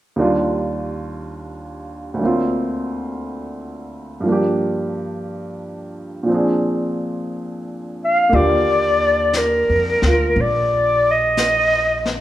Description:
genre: jazz ballad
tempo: 59 BPM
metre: 4/4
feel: swing 68% on 8ths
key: Eb major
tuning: A4 = 440 Hz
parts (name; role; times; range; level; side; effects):
- warm upright piano; accompaniment; 0.2-12.2 s; D2 to Ab4; -21 LUFS; right 1 dB; none
- clear clarinet; melody; 8.0-12.1 s; Bb4 to F5; -16 LUFS; left 1 dB; none
- upright bass; bass; 8.3-12.2 s; Bb1 to F2; -23 LUFS; equal; none
- vintage brush drum kit; drums; 8.3-12.2 s; brushed snare drum, hi-hat, snare drum; -27 LUFS; left 3 dB; none
room: moderate recital hall reverb, RT60 1.4 s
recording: recorded in a church or concert hall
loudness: -16 LUFS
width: side -13 dB against mid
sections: 0.2-8.3 A section; 8.3-12.2 B section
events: none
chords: 0.2 Ebmaj9; 2.2 D7alt; 4.2 Gm7; 6.3 Bb9; 8.3 Ebmaj9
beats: | 0.16 1.18 2.20 3.22 | 4.24 5.25 6.27 7.29 | 8.31 9.33 10.35 11.37

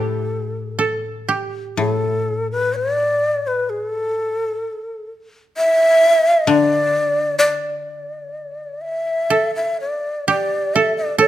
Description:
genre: japanese traditional, Japanese chamber music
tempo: 64 BPM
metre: 2/4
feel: uneven beats, rubato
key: A suspended pentatonic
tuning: A4 = 440 Hz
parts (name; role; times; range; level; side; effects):
- breathy mellow shakuhachi; melody; 0.0-11.3 s; A4 to E5; -18 LUFS; equal; none
- koto; second line; 0.0-3.3, 9.3-11.3 s; G4 to A4; -19 LUFS; right 4 dB; none
- koto; accompaniment; 0.0-9.3 s; A2 to D3; -23 LUFS; left 5 dB; none
room: moderate recital hall reverb, RT60 1.3 s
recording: close, detailed microphones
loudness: -16 LUFS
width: side -13 dB against mid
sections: 0.0-1.8 A section; 1.8-11.3 B section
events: none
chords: none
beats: 0.77 | 1.77 2.76 | 3.70 4.62 | 5.55 6.47 | 7.37 8.31 | 9.29 10.27 | 11.20

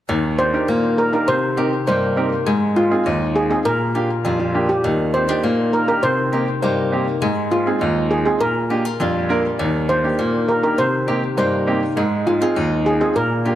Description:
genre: dancehall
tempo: 101 BPM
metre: 4/4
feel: straight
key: unclear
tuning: A4 = 439 Hz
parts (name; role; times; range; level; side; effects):
- warm grand piano; accompaniment; 0.1-13.6 s; Eb2 to Bb4; -21 LUFS; right 2 dB; none
- flamenco guitar; arpeggios; 0.1-13.6 s; Bb2 to G4; -22 LUFS; left 2 dB; ping-pong delay
- steel pan; melody; 0.4-13.6 s; F4 to C5; -20 LUFS; equal; ping-pong delay
room: light reverb, studio ambience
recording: lossy compression artefacts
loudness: -16 LUFS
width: side -12 dB against mid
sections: 0.1-13.6 A section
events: none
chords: 0.1 Ebmaj7; 1.3 Cm7; 2.5 Ab6; 3.7 Bb6; 4.8 Ebmaj7; 6.0 Cm7; 7.2 Ab6; 8.4 Bb6; 9.6 Ebmaj7; 10.8 Cm7; 12.0 Ab6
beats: | 0.09 0.68 1.28 1.87 | 2.46 3.06 3.65 4.25 | 4.84 5.43 6.03 6.62 | 7.22 7.81 8.41 9.00 | 9.59 10.19 10.78 11.38 | 11.97 12.56 13.16

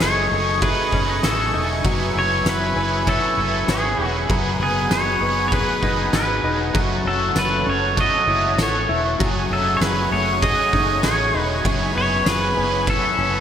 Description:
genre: dream pop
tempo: 98 BPM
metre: 4/4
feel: straight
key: unclear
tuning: A4 = 440 Hz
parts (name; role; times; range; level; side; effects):
- pedal steel guitar; melody; 0.0-13.4 s; G#4 to D#5; -21 LUFS; equal; digital delay
- biting overdriven guitar; accompaniment; 0.0-13.4 s; F#2 to G#4; -27 LUFS; right 4 dB; harmonic tremolo, analog chorus
- lush unison pad; sustained chords; 0.0-13.4 s; A3 to D#6; -26 LUFS; equal; chorus
- semi-hollow electric guitar; arpeggios; 0.0-13.4 s; F#2 to C#5; -26 LUFS; left 4 dB; analog chorus, digital delay
- vintage muted fingered electric bass; bass; 0.0-13.4 s; E1 to A1; -26 LUFS; equal; none
- oversized low-tuned drum kit; drums; 0.0-13.0 s; kick drum, ride cymbal, snare drum, tambourine; -25 LUFS; equal; gated reverb
room: wet lush hall reverb, RT60 1.7 s, studio ambience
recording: bright 1980s-style digital production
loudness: -17 LUFS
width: side -9 dB against mid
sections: 0.0-13.4 A section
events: none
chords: 0.0 B13/F#; 1.9 C#m7/F#; 4.3 G#m7/F#; 6.7 F#m7; 9.2 B13 (rootless); 11.6 C#m7/F#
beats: 0.01 0.62 1.24 | 1.85 2.46 3.07 3.69 | 4.30 4.91 5.52 6.14 | 6.75 7.36 7.97 8.59 | 9.20 9.81 10.42 11.03 | 11.65 12.26 12.87

